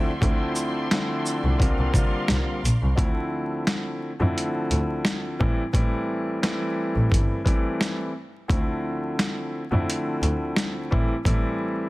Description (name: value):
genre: hip hop, boom-bap hip-hop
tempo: 87 BPM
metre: 4/4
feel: swing 54% on 16ths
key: D minor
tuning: A4 = 443 Hz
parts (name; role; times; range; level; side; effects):
- dark baby grand piano; accompaniment; 0.0-11.9 s; D3 to F4; -27 LUFS; equal; cassette tape, high-pass filter, low-pass filter
- bright studio string section; sustained chords; 0.0-3.0 s; F3 to C6; -34 LUFS; right 1 dB; high-pass filter, low-pass filter
- clear double bass; bass; 0.2-11.3 s; G1 to C3; -25 LUFS; equal; none
- boom bap sampler-style drum kit; drums; 0.2-11.4 s; hi-hat, kick drum, shaker, snare drum; -24 LUFS; equal; overdrive
room: small room ambience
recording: dense, heavily limited modern master, vinyl crackle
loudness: -22 LUFS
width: side -19 dB against mid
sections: 0.0-3.0 A section; 3.0-11.9 B section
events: none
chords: 0.0 Dm9; 1.6 C9sus4; 3.0 Dm7; 5.4 Am7; 8.5 Dm7; 10.9 Am7